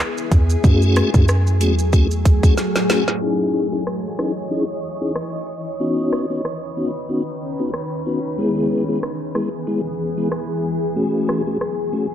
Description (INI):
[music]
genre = dancehall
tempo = 93 BPM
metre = 4/4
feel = swing 56% on 16ths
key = C# minor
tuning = A4 = 438 Hz
[part]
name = granular cloud pad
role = sustained chords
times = 0.0-12.1 s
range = D#3 to D#5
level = -24 LUFS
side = left 1 dB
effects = built-in reverb, sidechain pumping
[part]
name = island pop drum kit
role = drums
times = 0.2-11.8 s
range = hi-hat, kick drum, rim click, shaker, snare drum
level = -18 LUFS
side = equal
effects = none
[part]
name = warm 808-style bass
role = bass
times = 0.3-2.5 s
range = E2 to F#2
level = -17 LUFS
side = equal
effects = none
[part]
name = tonewheel organ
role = accompaniment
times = 0.6-12.1 s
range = G#3 to G#4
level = -22 LUFS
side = left 2 dB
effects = chorus vibrato, fast rotary speaker, sidechain pumping
[sound]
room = light reverb, digital ambience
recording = dark, warm production, low-pass filter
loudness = -17 LUFS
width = side -10 dB against mid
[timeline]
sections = 0.0-3.2 A section; 3.2-12.1 B section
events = drum fill 2.6-3.2; filter sweep 3.2-12.1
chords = 0.0 E; 0.6 F#madd9; 3.2 C#madd9; 5.8 Badd9; 8.4 E; 11.0 F#madd9